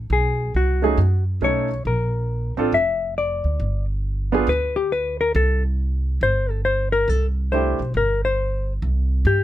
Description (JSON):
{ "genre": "jazz, small-group swing and bop", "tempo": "138 BPM", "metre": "4/4", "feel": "swing 65% on 8ths", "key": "unclear", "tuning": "A4 = 441 Hz", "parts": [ { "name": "upright bass", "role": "bass", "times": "0.0-9.4 s", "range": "F1 to G2", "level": "-22 LUFS", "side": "equal", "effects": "none" }, { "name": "hollow-body jazz guitar", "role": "melody", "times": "0.1-9.4 s", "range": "F#4 to E5", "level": "-22 LUFS", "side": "left 3 dB", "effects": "none" }, { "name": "warm concert grand piano", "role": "accompaniment", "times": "0.8-4.5, 7.5-7.8 s", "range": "A3 to A4", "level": "-21 LUFS", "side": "right 4 dB", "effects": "none" } ], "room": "little or no reverb", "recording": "close, detailed microphones", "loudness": "-19 LUFS", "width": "side -13 dB against mid", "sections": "0.0-8.8 A section", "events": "none", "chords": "0.1 B13; 1.9 Bbmaj7; 3.6 G; 5.3 C5; 8.8 Fsus2 (rootless)" }